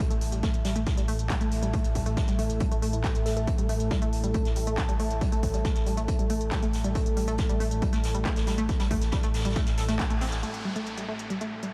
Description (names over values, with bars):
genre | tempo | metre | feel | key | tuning
driving peak-time techno | 138 BPM | 4/4 | straight | unclear | A4 = 440 Hz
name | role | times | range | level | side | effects
analog pluck | riff | 0.0-11.7 s | G3 to A4 | -35 LUFS | equal | chorus, sidechain pumping, tape echo
analog drone | drone | 0.0-11.7 s | A2 | -38 LUFS | equal | chorus, sidechain pumping
electronic kick drum | drums | 0.0-10.1 s | none | -30 LUFS | equal | overdrive, studio reverb
techno drum kit | drums | 0.0-11.7 s | handclaps, hi-hat | -41 LUFS | equal | overdrive, studio reverb, sidechain pumping on hats
vintage brush drum kit | drums | 0.0-10.4 s | hi-hat, snare drum | -44 LUFS | equal | high-pass filter on hats, studio reverb, high-pass filter on snare, high-pass filter on room
deep dark ambient pad | texture | 0.0-11.7 s | A4 to A5 | -39 LUFS | equal | chorus, built-in reverb, sidechain pumping
warm sub bass | bass | 0.1-10.4 s | A1 | -33 LUFS | equal | tube saturation, sidechain pumping, low-pass filter
downlifter | sound effects | 10.4-11.7 s | none | -42 LUFS | equal | none
room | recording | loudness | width
light reverb | none | -27 LUFS | mono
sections
0.0-10.4 A section; 10.4-11.7 B section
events
filter sweep on synth arpeggio sound 0.0-10.4; band accent 10.0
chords
0.0 A5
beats
| 0.00 0.43 0.87 1.30 | 1.74 2.17 2.60 3.04 | 3.48 3.91 4.34 4.78 | 5.21 5.65 6.08 6.52 | 6.95 7.39 7.82 8.26 | 8.69 9.13 9.56 10.00 | 10.43 10.87 11.30 11.73